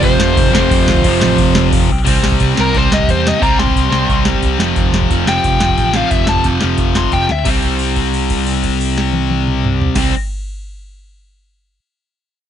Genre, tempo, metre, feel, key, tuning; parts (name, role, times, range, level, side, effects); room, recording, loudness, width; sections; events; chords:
punk rock; 178 BPM; 4/4; straight; A4 = 441 Hz
biting overdriven guitar; melody; 0.0-7.5 s; Bb4 to C6; -17 LUFS; left 1 dB
overdriven semi-hollow guitar; riff; 0.0-10.1 s; F2 to C4; -19 LUFS; right 14 dB
overdriven semi-hollow guitar; riff; 0.0-1.9 s; F2 to C4; -18 LUFS; right 2 dB
tight distorted guitar; riff; 0.0-10.1 s; F2 to C4; -18 LUFS; left 12 dB; distortion
overdriven picked electric bass; bass; 0.0-10.1 s; F1 to E2; -18 LUFS; equal
booming analog drum machine; drums; 0.0-10.0 s; crash cymbal, hi-hat, kick drum, snare drum, toms; -17 LUFS; equal
light reverb; nothing above 10.7 kHz; -11 LUFS; side -9 dB against mid
0.0-2.1 A section; 2.1-7.5 B section; 7.5-10.2 C section
break 1.9; overdriven electric guitar solo 2.1-7.5; drum fill 7.3; held note 7.5-10.0
0.0 F5; 2.1 C5; 4.6 F5; 7.5 C5